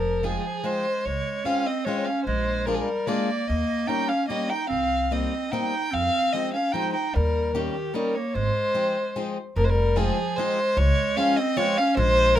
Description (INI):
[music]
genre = musette waltz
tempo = 148 BPM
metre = 3/4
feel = straight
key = unclear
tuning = A4 = 440 Hz
[part]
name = dark violin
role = melody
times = 0.0-12.4 s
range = G4 to G5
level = -25 LUFS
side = left 1 dB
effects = none
[part]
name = clear clarinet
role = second line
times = 0.0-12.4 s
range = Eb3 to Eb4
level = -29 LUFS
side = right 4 dB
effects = none
[part]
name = upright bass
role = bass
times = 0.0-12.4 s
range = F1 to F2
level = -25 LUFS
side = equal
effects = none
[part]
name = picked plugged-in swing-style acoustic guitar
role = accompaniment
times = 0.2-12.4 s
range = F3 to F4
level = -30 LUFS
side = left 4 dB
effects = none
[sound]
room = moderate small room reverb, RT60 0.6 s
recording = minimal, uncompressed stereo recording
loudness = -22 LUFS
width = side -11 dB against mid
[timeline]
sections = 0.0-9.6 A section; 9.6-12.4 A section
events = none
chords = 0.0 Fm7; 1.1 Dbmaj7; 2.3 Bb7; 3.5 Eb7; 4.7 Cm7; 5.9 Fm7; 7.1 Eb7; 8.3 Ab6; 9.6 Fm7; 10.8 Dbmaj7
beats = 0.24 0.65 | 1.05 1.46 1.86 | 2.27 2.67 3.08 | 3.49 3.90 4.31 | 4.72 5.12 5.53 | 5.94 6.34 6.74 | 7.14 7.54 7.95 | 8.35 8.75 9.16 | 9.57 9.97 10.38 | 10.78 11.18 11.57 | 11.97 12.37